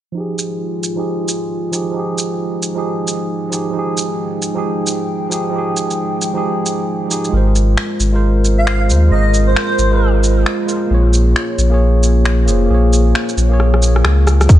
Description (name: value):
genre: future garage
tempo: 134 BPM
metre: 4/4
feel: swing 62% on 16ths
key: F minor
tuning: A4 = 438 Hz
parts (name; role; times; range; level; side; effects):
- bright tine electric piano; accompaniment; 0.1-14.6 s; F3 to Db5; -20 LUFS; right 3 dB; medium stereo tremolo, sidechain pumping, low-pass filter, dub echo
- dark analog pad; sustained chords; 0.2-14.6 s; Ab3 to G5; -22 LUFS; left 1 dB; wide subtle chorus, sidechain pumping
- electronic shaker, finger snaps and rim click; drums; 0.4-14.6 s; none; -20 LUFS; equal; small room ambience
- warm sub bass; bass; 7.3-14.6 s; F1 to Eb2; -12 LUFS; equal; sidechain pumping
- airy dreamy lead; melody; 8.6-10.1 s; C5 to F5; -22 LUFS; equal; chorus, dub echo
- electronic kick drum; drums; 14.5-14.6 s; none; -4 LUFS; equal; small room ambience
room: light reverb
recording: nothing above 10.4 kHz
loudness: -13 LUFS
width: side -13 dB against mid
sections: 0.2-14.5 A section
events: filter sweep on tine electric piano 0.2-14.5; drum fill 13.6-14.5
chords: 0.2 Fm9; 7.3 Ab69; 10.9 Bbm7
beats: | 0.16 0.61 1.06 1.51 | 1.96 2.40 2.85 3.30 | 3.75 4.19 4.64 5.09 | 5.54 5.99 6.43 6.88 | 7.33 7.78 8.22 8.67 | 9.12 9.57 10.02 10.46 | 10.91 11.36 11.81 12.25 | 12.70 13.15 13.60 14.04 | 14.49